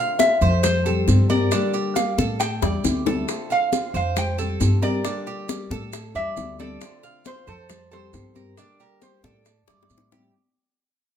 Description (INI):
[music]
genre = latin, Cuban son and guajira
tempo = 136 BPM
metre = 4/4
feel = straight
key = D minor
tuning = A4 = 441 Hz
[part]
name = lap resonator guitar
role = melody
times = 0.0-10.1 s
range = A4 to G5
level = -24 LUFS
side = equal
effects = none
[part]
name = nylon-string guitar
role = accompaniment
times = 0.0-10.3 s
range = D3 to G4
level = -29 LUFS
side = left 4 dB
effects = none
[part]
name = Cuban tres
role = arpeggios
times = 0.0-10.3 s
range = D4 to F5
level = -30 LUFS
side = right 5 dB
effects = none
[part]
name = bongos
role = percussion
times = 0.2-10.2 s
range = none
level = -28 LUFS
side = left 6 dB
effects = none
[part]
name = congas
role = percussion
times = 0.2-10.3 s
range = none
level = -27 LUFS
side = left 3 dB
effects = none
[part]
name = maracas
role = percussion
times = 0.2-10.3 s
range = none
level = -34 LUFS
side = right 8 dB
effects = none
[part]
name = upright bass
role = bass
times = 0.4-10.3 s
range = D2 to A2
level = -22 LUFS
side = equal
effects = none
[sound]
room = moderate large studio reverb, RT60 0.8 s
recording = minimal, uncompressed stereo recording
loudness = -19 LUFS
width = side -9 dB against mid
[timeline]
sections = 0.0-10.3 A section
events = fade-out 0.0-10.3; drum fill 2.6-3.3, 9.7-10.3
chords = 0.0 Dm7; 0.6 Fadd9; 1.5 Gm; 2.4 A7sus4; 3.3 Dm7; 4.2 Fadd9; 5.0 Gm; 5.9 A7sus4; 6.8 Dm7; 7.7 Fadd9; 8.6 Gm; 9.5 A7sus4